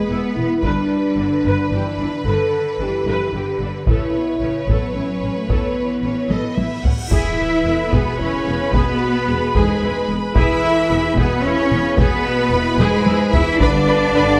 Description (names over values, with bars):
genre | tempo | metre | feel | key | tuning
cinematic, epic orchestral film score | 111 BPM | 3/4 | straight | E major | A4 = 440 Hz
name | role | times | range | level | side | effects
rich symphonic violin section | melody | 0.0-14.4 s | G#4 to F#5 | -31 LUFS | equal | none
warm symphonic violin section | second line | 0.0-14.2 s | B4 to B5 | -30 LUFS | equal | none
rich symphonic viola section | accompaniment | 0.0-14.2 s | B3 to B4 | -30 LUFS | equal | none
dark French horn section | sustained chords | 0.0-14.4 s | G#3 to B4 | -25 LUFS | equal | none
rich symphonic cello section | bass | 0.0-14.4 s | B2 to E4 | -25 LUFS | equal | none
rich symphonic double bass section | bass | 0.1-14.4 s | E1 to A1 | -26 LUFS | equal | none
solo taiko drums | drums | 0.6-14.1 s | none | -22 LUFS | equal | none
cymbal swell and impact | sound effects | 6.8-8.7 s | none | -32 LUFS | equal | none
clear trombone section | sustained chords | 7.1-14.4 s | G#2 to E3 | -27 LUFS | equal | none
mellow trumpet | stabs | 7.1-14.4 s | G#4 to E5 | -28 LUFS | equal | none
room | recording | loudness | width
moderate scoring stage reverb, RT60 1.9 s | none | -18 LUFS | mono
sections
0.0-7.1 A section; 7.1-14.4 A section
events
drum fill 6.3-7.1, 12.8-13.6; cymbal swell 6.8-7.1; impact 7.1-8.7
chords
0.0 E; 0.6 G; 3.9 Aadd9; 7.1 E; 13.6 G